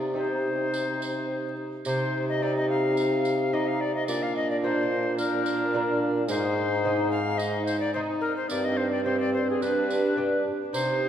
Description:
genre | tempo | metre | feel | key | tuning
classical, renaissance-style consort dance | 108 BPM | 4/4 | straight | C minor | A4 = 440 Hz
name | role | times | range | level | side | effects
lute | accompaniment | 0.0-11.1 s | G2 to Bb4 | -31 LUFS | equal | none
warm viola | accompaniment | 0.0-11.1 s | C4 to Eb4 | -31 LUFS | equal | none
mellow bassoon | bass | 0.0-11.1 s | G2 to C3 | -29 LUFS | right 2 dB | none
alto recorder | melody | 0.2-11.1 s | Ab4 to F5 | -29 LUFS | left 3 dB | none
tambourine | percussion | 0.7-11.0 s | none | -42 LUFS | right 5 dB | none
room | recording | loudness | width
wet church reverb, RT60 3.0 s | dark, warm production, vinyl crackle | -24 LUFS | side -9 dB against mid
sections
0.0-1.9 A section; 1.9-11.1 A section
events
none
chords
0.0 Cm; 4.1 Bb; 6.3 Ab; 8.5 Gsus4; 9.6 G

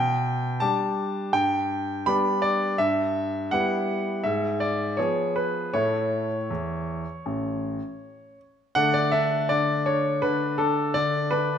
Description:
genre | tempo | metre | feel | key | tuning
classical-period piano sonatina | 82 BPM | 4/4 | rubato | D major | A4 = 440 Hz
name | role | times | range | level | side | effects
clear grand piano | solo | 0.0-11.6 s | A1 to B5 | -23 LUFS | equal | none
room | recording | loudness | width
moderate recital hall reverb, RT60 1.4 s | none | -23 LUFS | side -8 dB against mid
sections
0.0-8.7 A section; 8.7-11.6 B section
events
none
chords
0.0 G/B; 1.3 G; 2.8 Em/G; 4.2 G#dim7; 5.7 A; 8.7 D5

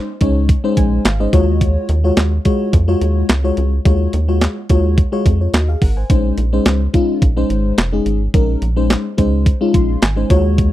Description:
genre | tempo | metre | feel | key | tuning
early-eighties boogie funk | 107 BPM | 4/4 | straight | Bb minor | A4 = 436 Hz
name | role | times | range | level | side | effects
FM electric piano with soft pad layer | accompaniment | 0.0-10.7 s | Ab3 to C6 | -18 LUFS | left 2 dB | chorus
rubbery square bass | bass | 0.2-10.7 s | F1 to F2 | -16 LUFS | equal | none
clean 12-bit digital drum machine | drums | 0.2-10.7 s | handclaps, hi-hat, kick drum, snare drum | -14 LUFS | equal | none
room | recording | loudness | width
little or no reverb | dry, close 1970s-style studio recording | -13 LUFS | side -14 dB against mid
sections
0.0-10.7 A section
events
FM electric piano fill 0.5-1.6, 9.5-10.6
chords
0.0 Bbm11; 1.3 Ebm11; 6.1 Bbm11

